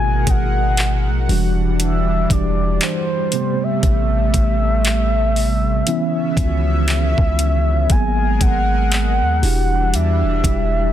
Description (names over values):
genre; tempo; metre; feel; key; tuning
contemporary R&B; 59 BPM; 4/4; swing 58% on 16ths; unclear; A4 = 442 Hz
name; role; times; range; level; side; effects
mellow horn-like synth lead; melody; 0.0-10.9 s; B#4 to G#5; -22 LUFS; equal; chorus, tremolo, ping-pong delay
mellow tine electric piano; accompaniment; 0.0-10.9 s; B2 to G#4; -23 LUFS; equal; medium stereo tremolo
chorused pulse-width pad; sustained chords; 0.0-10.9 s; C3 to F#5; -25 LUFS; right 3 dB; none
warm 808-style bass; bass; 0.0-10.9 s; E1 to E2; -18 LUFS; equal; none
smooth R&B drum kit; drums; 0.3-10.7 s; handclaps, hi-hat, kick drum; -20 LUFS; equal; none
room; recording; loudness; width
digital ambience; dense, heavily limited modern master; -15 LUFS; side -11 dB against mid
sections
0.0-10.9 A section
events
none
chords
0.0 G#m9; 1.3 Em9; 3.3 Am9; 5.9 C#m9; 7.9 G#m9; 9.4 Em9